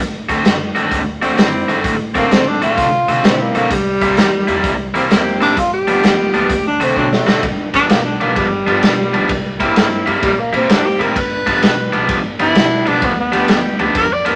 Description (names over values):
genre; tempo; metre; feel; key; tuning
electric blues shuffle; 129 BPM; 4/4; swing 66% on 8ths; G mixolydian; A4 = 440 Hz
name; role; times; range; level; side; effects
upright bass; bass; 0.0-14.4 s; G1 to C3; -29 LUFS; equal; none
cranked stack guitar; riff; 0.3-14.4 s; G2 to F#4; -20 LUFS; equal; overdrive
raw garage drum kit; drums; 0.3-14.3 s; hi-hat, kick drum, ride cymbal, snare drum; -20 LUFS; equal; none
bright horn section; stabs; 1.2-13.9 s; F#3 to A4; -23 LUFS; equal; none
breathy tenor saxophone; melody; 2.2-14.4 s; G3 to D5; -19 LUFS; equal; none
room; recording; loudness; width
light reverb; none; -15 LUFS; mono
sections
0.0-7.4 A section; 7.4-14.4 A section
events
tenor saxophone solo 0.0-7.4, 7.4-14.4; drum fill 7.0-7.4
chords
0.0 D7; 3.7 C7; 5.6 G7; 6.5 D7; 7.4 G7; 9.3 C7; 11.2 G7